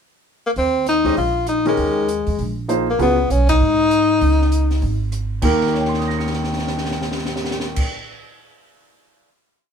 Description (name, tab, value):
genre	modal jazz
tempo	198 BPM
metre	4/4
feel	swing 62% on 8ths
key	Eb mixolydian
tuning	A4 = 440 Hz
part	warm tenor saxophone	melody	0.5-5.1 s	Ab3 to F4	-17 LUFS	left 3 dB	none
part	upright bass	bass	0.6-7.8 s	Ab1 to Ab2	-22 LUFS	right 1 dB	none
part	open jazz drum kit	drums	0.6-9.3 s	crash cymbal, hi-hat, kick drum, ride cymbal, rim click, snare drum	-26 LUFS	equal	none
part	warm baby grand piano	accompaniment	1.0-3.2, 5.4-8.0 s	Eb2 to Db7	-21 LUFS	right 1 dB	none
room	moderate small room reverb, RT60 0.5 s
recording	band playing live in one room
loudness	-16 LUFS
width	side -7 dB against mid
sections	0.0-0.6 pickup bar; 0.6-5.4 A section; 5.4-7.8 final chord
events	band accent 3.5; drum fill 5.6-7.8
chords	0.0 N.C.; 0.6 Eb7sus4; 3.0 Db7sus2; 5.4 Eb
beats	0.26 | 0.56 0.87 1.17 1.48 | 1.78 2.09 2.39 2.69 | 3.00 3.30 3.61 3.91 | 4.21 4.52 4.82 5.12 | 5.42 5.73 6.03 6.33 | 6.63 6.93 7.24 7.54